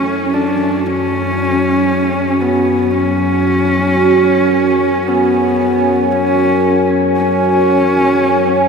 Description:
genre	dark ambient drone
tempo	free time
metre	none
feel	none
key	unclear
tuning	A4 = 440 Hz
part	dark horsehead fiddle	melody	0.0-8.7 s	B3 to D4	-16 LUFS	equal	shimmer reverb, diffuse ambient delay
part	deep dark ambient pad	sustained chords	0.0-8.7 s	F#4 to G#5	-16 LUFS	equal	chorus, built-in reverb, shimmer reverb
part	overtone-sweeping drone	drone	0.0-8.7 s	F#2	-16 LUFS	right 1 dB	chorus, built-in reverb, phaser
room	wet huge ambient reverb, RT60 7.8 s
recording	dreamy mix soaked in reverb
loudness	-11 LUFS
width	side -5 dB against mid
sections	0.0-8.7 A section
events	none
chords	0.0 F#m7

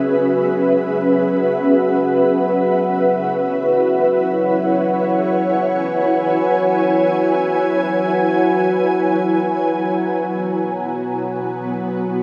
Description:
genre	ambient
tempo	free time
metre	none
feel	none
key	unclear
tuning	A4 = 440 Hz
part	ethereal airy pad	sustained chords	0.0-12.2 s	B3 to G#5	-19 LUFS	equal	ensemble chorus, built-in reverb, tremolo
part	overtone-sweeping drone	drone	0.0-12.2 s	F#3 to F#4	-23 LUFS	equal	chorus, built-in reverb
room	wet plate reverb, RT60 2.8 s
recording	none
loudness	-18 LUFS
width	mono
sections	0.0-12.2 A section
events	none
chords	0.0 C#m7; 10.1 B5

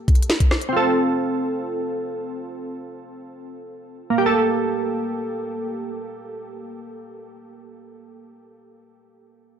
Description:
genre	hip hop, drill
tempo	free time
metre	none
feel	none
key	G minor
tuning	A4 = 440 Hz
part	glassy digital keys	accompaniment	0.0-9.6 s	Bb3 to A4	-23 LUFS	right 2 dB	chorus
part	drill drum kit	drums	0.1-0.7 s	hi-hat, kick drum, rim click, snare drum	-16 LUFS	equal	none
room	light reverb, digital ambience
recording	dark, warm production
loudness	-20 LUFS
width	side -8 dB against mid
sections	0.0-4.2 A section; 4.2-7.6 B section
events	none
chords	0.0 Gmadd9; 0.7 F; 4.2 Gmadd9

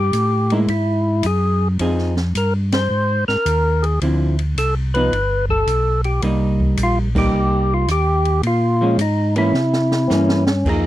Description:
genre	soul jazz organ trio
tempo	108 BPM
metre	4/4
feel	swing 67% on 8ths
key	unclear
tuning	A4 = 439 Hz
part	percussive tonewheel organ	melody	0.0-10.9 s	C4 to C5	-19 LUFS	left 1 dB	slow rotary speaker, overdrive
part	mellow tonewheel organ	bass	0.0-10.9 s	G1 to C3	-19 LUFS	equal	chorus vibrato, slow rotary speaker
part	open jazz drum kit	drums	0.1-10.8 s	crash cymbal, hi-hat, kick drum, ride cymbal, snare drum	-27 LUFS	equal	none
part	vintage hollow-body jazz guitar	accompaniment	0.5-10.9 s	D3 to Ab4	-20 LUFS	right 1 dB	none
room	little or no reverb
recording	dry, close 1970s-style studio recording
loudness	-16 LUFS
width	side -14 dB against mid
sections	0.0-10.7 A section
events	band accent 2.6, 7.1; drum fill 9.6-10.7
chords	0.0 Gm; 0.7 Eadd9; 1.8 Fm7; 4.0 Dm9; 5.1 G; 6.2 Cm7; 8.4 Bbm7; 9.6 C7b9

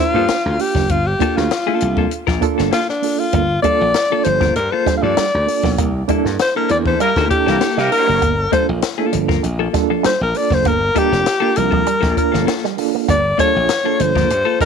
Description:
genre	funk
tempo	98 BPM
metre	4/4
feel	straight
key	G dorian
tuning	A4 = 437 Hz
part	bright alto saxophone	melody	0.0-14.7 s	D4 to F5	-17 LUFS	left 3 dB	none
part	reed electric piano	stabs	0.0-14.7 s	Bb3 to C5	-22 LUFS	right 17 dB	medium tremolo
part	slap bass	bass	0.1-14.6 s	F1 to C3	-21 LUFS	equal	none
part	clean electric guitar	accompaniment	0.2-14.6 s	Bb3 to Bb4	-23 LUFS	left 13 dB	tremolo
part	compact cocktail drum kit	drums	0.3-14.7 s	hi-hat, kick drum, snare drum	-22 LUFS	left 3 dB	none
part	electric guitar with an envelope filter	riff	3.3-14.7 s	E3 to Bb3	-24 LUFS	right 17 dB	spring reverb
part	dark horn section	second line	7.0-8.2 s	G3 to Bb4	-23 LUFS	right 2 dB	none
room	small room ambience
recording	1960s-style stereo with parts hard left and right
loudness	-14 LUFS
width	side -6 dB against mid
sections	0.0-14.7 A section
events	break 0.0-3.3; alto saxophone solo 0.0-14.7; band accent 5.8-8.2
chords	0.0 Gm9; 5.8 C13; 8.2 Gm9

